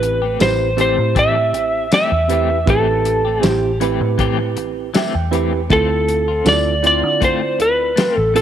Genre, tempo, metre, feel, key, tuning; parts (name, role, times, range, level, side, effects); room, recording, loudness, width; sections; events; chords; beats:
straight-eighth soul blues; 79 BPM; 4/4; swing 54% on 16ths; A minor; A4 = 440 Hz
electric slide guitar; melody; 0.0-8.4 s; A4 to E5; -16 LUFS; equal
reed electric piano; accompaniment; 0.0-8.4 s; C4 to G5; -22 LUFS; right 12 dB; overdrive
clean electric guitar; stabs; 0.0-8.4 s; E3 to G4; -25 LUFS; left 11 dB; tremolo
vintage muted fingered electric bass; bass; 0.0-8.4 s; A1 to D3; -21 LUFS; left 1 dB
warm soul drum kit; drums; 0.0-8.4 s; hi-hat, kick drum, snare drum, tambourine; -20 LUFS; left 1 dB
light reverb, small room ambience; 1960s-style stereo with parts hard left and right; -14 LUFS; side -10 dB against mid
0.0-8.4 A section
reed electric piano fill 4.6-5.7
0.0 Am7; 5.7 Dm7
0.40 1.16 1.92 | 2.68 3.43 4.19 4.95 | 5.71 6.46 7.22 7.97